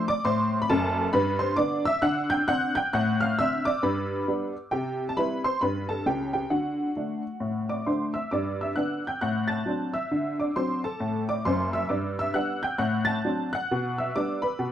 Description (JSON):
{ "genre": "jazz, stride piano", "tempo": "134 BPM", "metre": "4/4", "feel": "swing 61% on 8ths", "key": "G major", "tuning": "A4 = 439 Hz", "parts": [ { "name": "honky-tonk upright piano", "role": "solo", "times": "0.0-14.7 s", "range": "F#1 to A6", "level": "-24 LUFS", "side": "equal", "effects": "none" } ], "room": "moderate small room ambience, RT60 0.5 s", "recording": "dark, warm production", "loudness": "-24 LUFS", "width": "side -10 dB against mid", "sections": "0.0-8.3 A section; 8.3-14.7 B section", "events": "none", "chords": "0.0 D5; 1.1 G; 2.0 D7; 2.9 D7/A; 3.8 G; 4.7 C; 6.5 D; 8.3 G; 9.2 D7/A; 10.1 D7; 11.9 G; 12.8 D7/A; 13.7 G/B", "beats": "0.23 0.68 | 1.12 1.57 2.02 2.47 | 2.92 3.37 3.82 4.26 | 4.71 5.16 5.61 6.06 | 6.51 6.96 7.41 7.86 | 8.31 8.76 9.21 9.66 | 10.11 10.55 11.00 11.45 | 11.90 12.35 12.80 13.24 | 13.69 14.14 14.59" }